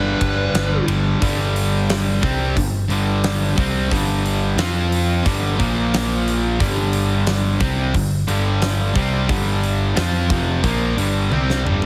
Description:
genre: hard rock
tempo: 89 BPM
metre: 4/4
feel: straight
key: unclear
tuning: A4 = 440 Hz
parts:
  - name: lead guitar through a small cranked amp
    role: melody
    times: 0.0-0.8 s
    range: B4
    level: -28 LUFS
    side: equal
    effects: overdrive, analog delay
  - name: crunchy overdriven guitar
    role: riff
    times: 0.0-11.9 s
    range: F2 to F4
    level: -29 LUFS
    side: equal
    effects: none
  - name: distorted electric guitar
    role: riff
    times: 0.0-11.9 s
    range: F2 to F4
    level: -25 LUFS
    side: equal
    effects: overdrive
  - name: sludgy distorted guitar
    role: riff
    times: 0.0-11.9 s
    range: F2 to F4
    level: -28 LUFS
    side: equal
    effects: overdrive
  - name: picked electric bass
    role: bass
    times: 0.0-11.9 s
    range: F1 to F2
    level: -24 LUFS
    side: equal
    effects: none
  - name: huge arena drum kit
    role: drums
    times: 0.2-11.9 s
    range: hi-hat, kick drum, ride cymbal, snare drum, toms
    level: -26 LUFS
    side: equal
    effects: none
room: small room ambience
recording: heavily compressed radio sound, multiband compression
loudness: -19 LUFS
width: mono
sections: 0.0-1.2 A section; 1.2-11.9 B section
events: drum fill 11.3-11.9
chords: 0.0 G; 1.2 G5; 4.6 F5; 5.3 G5; 5.6 Bb5; 6.6 G5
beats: 0.54 | 1.22 1.89 2.56 3.23 | 3.91 4.58 5.25 5.92 | 6.60 7.27 7.94 8.61 | 9.29 9.96 10.63 11.30

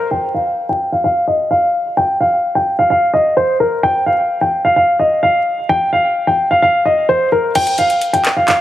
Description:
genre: hip hop, trap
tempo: 129 BPM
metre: 4/4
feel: half-time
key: unclear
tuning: A4 = 440 Hz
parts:
  - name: dark baby grand piano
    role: melody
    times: 0.0-8.6 s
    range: Bb4 to G5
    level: -12 LUFS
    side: equal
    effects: low-pass filter, digital delay
  - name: trap drum kit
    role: drums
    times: 7.6-8.6 s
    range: crash cymbal, handclaps, hi-hat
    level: -18 LUFS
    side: equal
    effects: none
room: moderate plate reverb, RT60 2.6 s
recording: heavily compressed radio sound, vinyl crackle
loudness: -12 LUFS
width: side -13 dB against mid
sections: 0.1-7.6 A section; 7.6-8.6 B section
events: filter sweep on grand piano 0.1-7.6; kick muted 7.6-8.6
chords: none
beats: | 0.11 0.58 1.04 1.51 | 1.97 2.44 2.90 3.37 | 3.83 4.30 4.76 5.23 | 5.69 6.16 6.62 7.09 | 7.55 8.02 8.48

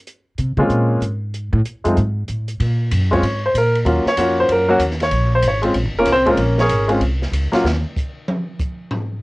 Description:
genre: jazz piano trio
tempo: 190 BPM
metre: 4/4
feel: swing 64% on 8ths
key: Bb minor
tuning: A4 = 440 Hz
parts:
  - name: open jazz drum kit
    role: drums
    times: 0.1-9.0 s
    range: hi-hat, kick drum, ride cymbal, snare drum, toms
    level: -26 LUFS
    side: equal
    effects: cassette tape
  - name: upright bass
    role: bass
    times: 0.4-7.8 s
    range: F1 to Db3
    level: -19 LUFS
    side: equal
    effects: none
  - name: warm grand piano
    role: melody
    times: 0.6-7.6 s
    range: Gb3 to Db5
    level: -16 LUFS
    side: equal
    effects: none
room: moderate booth ambience, RT60 0.2 s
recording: home recording on cassette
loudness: -16 LUFS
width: side -22 dB against mid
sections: 0.0-2.6 A section; 2.6-9.2 A section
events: upright bass solo 0.0-2.6; grand piano solo 2.6-9.2; drum solo 7.6-9.2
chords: 0.1 Bbm7; 1.3 F(#9) (rootless); 2.6 Bbm7; 3.9 Ebm9; 5.1 Bbm7; 7.6 N.C.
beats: | 0.07 0.39 0.70 1.02 | 1.33 1.65 1.97 2.28 | 2.60 2.91 3.23 3.54 | 3.86 4.18 4.49 4.81 | 5.12 5.44 5.75 6.07 | 6.39 6.70 7.02 7.33 | 7.65 7.96 8.28 8.59 | 8.91

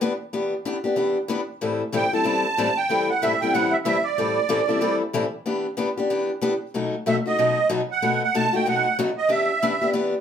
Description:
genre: jazz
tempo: 187 BPM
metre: 4/4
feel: swing 60% on 8ths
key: E minor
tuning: A4 = 440 Hz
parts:
  - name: picked steel-string acoustic guitar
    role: accompaniment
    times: 0.0-10.1 s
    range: A2 to A4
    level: -23 LUFS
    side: left 3 dB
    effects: none
  - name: musette accordion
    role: melody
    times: 2.0-5.0, 7.1-9.9 s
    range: D5 to A5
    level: -22 LUFS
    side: right 3 dB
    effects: plate reverb
room: wet small room reverb, RT60 0.5 s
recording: heard from further back in the room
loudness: -20 LUFS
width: side -8 dB against mid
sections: 0.0-10.2 A section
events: none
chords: 0.0 Em7; 1.6 Am7; 5.4 Em7; 6.7 B7; 9.3 Em7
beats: 0.01 | 0.33 0.64 0.96 1.28 | 1.60 1.92 2.24 2.56 | 2.88 3.20 3.52 3.85 | 4.17 4.49 4.81 5.13 | 5.45 5.77 6.09 6.41 | 6.73 7.05 7.37 7.69 | 8.01 8.33 8.65 8.97 | 9.29 9.62 9.94

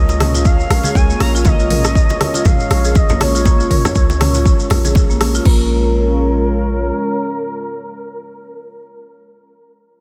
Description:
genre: afro house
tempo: 120 BPM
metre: 4/4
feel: swing 57% on 16ths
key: Bb minor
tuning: A4 = 441 Hz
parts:
  - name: expressive portamento lead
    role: melody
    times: 0.0-8.7 s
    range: Bb4 to Bb5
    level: -25 LUFS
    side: equal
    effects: lush chorus, vintage 12-bit sampler grit, tape echo
  - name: dark analog pad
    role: sustained chords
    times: 0.0-8.7 s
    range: Ab3 to Db5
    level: -25 LUFS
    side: equal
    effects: chorus, sidechain pumping
  - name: warm 808-style bass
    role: bass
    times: 0.0-6.9 s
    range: Bb1 to Db2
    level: -20 LUFS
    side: equal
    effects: sidechain pumping
  - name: congas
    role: percussion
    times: 0.1-5.3 s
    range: none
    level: -26 LUFS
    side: equal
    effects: none
  - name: maracas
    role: percussion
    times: 0.1-5.4 s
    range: none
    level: -29 LUFS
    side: equal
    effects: none
  - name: marimba with medium mallets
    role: arpeggios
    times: 0.2-5.7 s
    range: Bb3 to Bb4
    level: -25 LUFS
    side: equal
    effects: sidechain pumping, tape echo
  - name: deep house drum kit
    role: drums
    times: 0.2-5.3 s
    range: hi-hat, rim click, toms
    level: -24 LUFS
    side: equal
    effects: none
  - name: deep house drum kit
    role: drums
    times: 0.5-5.6 s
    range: crash cymbal, kick drum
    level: -16 LUFS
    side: equal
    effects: none
room: light reverb, digital ambience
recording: none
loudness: -14 LUFS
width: mono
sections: 0.0-5.5 A section; 5.5-9.5 B section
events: drop 0.0-5.5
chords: 0.0 Bbm7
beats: 0.46 0.95 | 1.46 1.96 2.46 2.96 | 3.46 3.96 4.46 4.96 | 5.46 5.96 6.46 6.96 | 7.46 7.96 8.46

